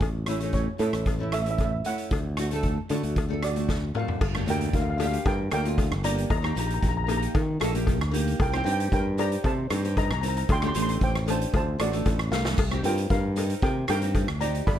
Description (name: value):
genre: calypso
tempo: 115 BPM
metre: 4/4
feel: straight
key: G minor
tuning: A4 = 440 Hz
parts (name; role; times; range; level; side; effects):
- modern bright fingered electric bass; bass; 0.0-14.8 s; G1 to Eb3; -27 LUFS; equal; none
- street-band drum kit; drums; 0.0-14.8 s; crash cymbal, hi-hat, kick drum, rim click, snare drum, splash cymbal, toms; -28 LUFS; equal; none
- cowbell; percussion; 0.0-14.8 s; none; -34 LUFS; left 9 dB; none
- flamenco guitar; accompaniment; 0.3-14.6 s; A3 to Bb4; -32 LUFS; equal; double-tracked left and right, plate reverb
- steel pan; melody; 0.5-14.8 s; F#4 to C6; -31 LUFS; right 1 dB; plate reverb
room: light reverb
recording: dark, warm production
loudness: -23 LUFS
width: side -10 dB against mid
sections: 0.0-4.2 A section; 4.2-14.8 B section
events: drum fill 3.7-4.2, 12.3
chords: 0.0 A; 2.1 D; 4.2 Gm; 6.3 Eb; 8.4 Cm7; 10.5 D7sus4; 11.5 D7; 12.6 Cm7